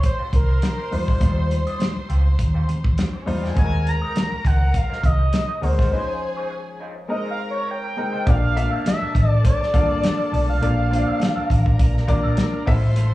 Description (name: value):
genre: lush 1970s-style soul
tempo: 102 BPM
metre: 4/4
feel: swing 54% on 16ths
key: Eb mixolydian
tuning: A4 = 441 Hz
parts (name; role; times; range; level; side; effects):
- expressive synth lead; melody; 0.0-12.2 s; Bb4 to Bb5; -26 LUFS; equal; chorus, slapback echo
- rich studio violin section; second line; 0.0-13.1 s; C4 to C6; -36 LUFS; equal; slapback echo
- warm baby grand piano; accompaniment; 0.0-13.1 s; F3 to F5; -28 LUFS; left 2 dB; slapback echo
- electric guitar through a small old amp; riff; 0.0-13.1 s; F3 to Eb5; -36 LUFS; right 2 dB; wah, slapback echo
- warm soul drum kit; drums; 0.0-13.1 s; hi-hat, kick drum, snare drum; -21 LUFS; equal; none
- congas; percussion; 0.0-13.1 s; none; -31 LUFS; right 2 dB; none
- hollow-body short-scale fingered electric bass; bass; 0.3-13.1 s; G1 to Fb2; -19 LUFS; equal; none
room: light reverb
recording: live gig heard through the venue's PA, club reverb, small room ambience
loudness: -18 LUFS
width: side -16 dB against mid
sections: 0.0-8.3 A section; 8.3-13.1 B section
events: analog synth lead solo 0.0-8.3; break 5.9-8.3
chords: 0.0 Eb69; 3.6 Ab9; 5.9 Dbmaj9; 7.1 Bb9sus4; 8.3 Bbmaj7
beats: 0.04 0.63 | 1.22 1.80 2.39 2.98 | 3.57 4.16 4.74 5.33 | 5.92 6.51 7.09 7.68 | 8.27 8.86 9.44 10.03 | 10.62 11.21 11.79 12.38 | 12.97